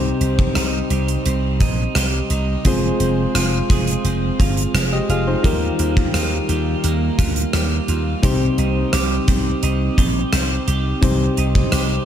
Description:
1980s-style pop; 86 BPM; 4/4; straight; C minor; A4 = 440 Hz
soft electric-piano-like synth keys; accompaniment; 0.0-12.1 s; C3 to F5; -22 LUFS; left 2 dB; chorus
twelve-string electric guitar; riff; 0.0-12.1 s; G3 to G4; -25 LUFS; right 5 dB; lush chorus, ping-pong delay
slap bass; bass; 0.0-12.0 s; F1 to Eb2; -21 LUFS; equal
gated 80s drum kit; drums; 0.2-11.9 s; hi-hat, kick drum, rim click; -20 LUFS; equal
moderate huge ambient reverb, RT60 7.5 s; dreamy mix soaked in reverb; -16 LUFS; side -9 dB against mid
0.0-12.1 A section
0.0 Cm; 2.7 Fm; 5.4 Ebadd9; 8.2 Cm

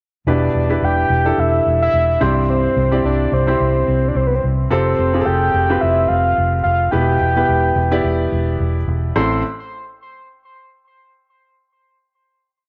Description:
piano-driven pop; 108 BPM; 4/4; swing 56% on 16ths; A minor; A4 = 440 Hz
soft octave-layered synth lead; melody; 0.3-9.4 s; B4 to C6; -21 LUFS; equal; chorus
clear concert grand piano; accompaniment; 0.3-9.4 s; A1 to D5; -22 LUFS; equal
vintage muted fingered electric bass; bass; 0.3-9.4 s; E1 to C2; -21 LUFS; equal
moderate spring reverb, RT60 1.3 s; -17 LUFS; mono
0.3-9.2 verse; 9.2-11.4 final chord
0.3 Em7; 2.2 C; 4.7 Fadd9; 6.9 Em; 9.2 Am

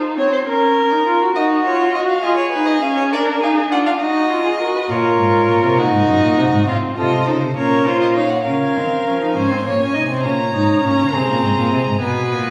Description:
classical, baroque-style fugue for string quartet; 68 BPM (dotted quarters); 6/8; straight; A4 = 439 Hz
rich viola; accompaniment; 0.0-12.5 s; Bb3 to Gb4; -20 LUFS; equal
warm violin; second line; 0.2-12.5 s; F4 to Eb5; -22 LUFS; equal
rich violin; melody; 1.4-12.5 s; Cb5 to Bb5; -25 LUFS; equal
rich cello; bass; 4.9-12.5 s; Gb2 to F3; -23 LUFS; equal
wet recital hall reverb, RT60 1.7 s; recorded in a church or concert hall, small room ambience; -17 LUFS; mono
0.0-8.5 A section; 8.5-12.5 B section
0.5 Bbm/Db; 1.4 Ebm; 2.2 Fm7 (rootless); 3.1 Bb7/D; 4.0 Ebm; 4.9 Bbm; 5.8 Cm7b5 (rootless); 6.7 F7; 7.6 Bbm; 8.5 Bbm/Db; 9.4 Ab; 10.3 Absus24; 11.1 Abadd9

